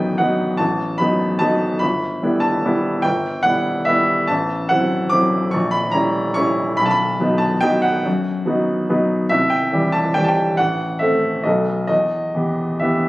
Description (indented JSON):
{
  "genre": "classical, piano waltz",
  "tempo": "129-154 BPM",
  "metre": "3/4",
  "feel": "rubato",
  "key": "E minor",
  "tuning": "A4 = 440 Hz",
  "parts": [
    { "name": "clear baby grand piano", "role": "solo", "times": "0.0-13.1 s", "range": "G1 to D6", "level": "-16 LUFS", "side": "equal", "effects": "none" }
  ],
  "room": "moderate recital hall reverb, RT60 1.5 s",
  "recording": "recorded on a phone in the room, studio ambience, compression",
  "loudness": "-16 LUFS",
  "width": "side -18 dB against mid",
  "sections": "0.0-13.1 A section",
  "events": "none",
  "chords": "0.0 B7/A; 1.8 Em/G; 4.3 F#m7b5/A; 5.5 A#dim7; 6.8 B; 9.3 C; 10.6 Am; 11.4 B7; 11.9 Em"
}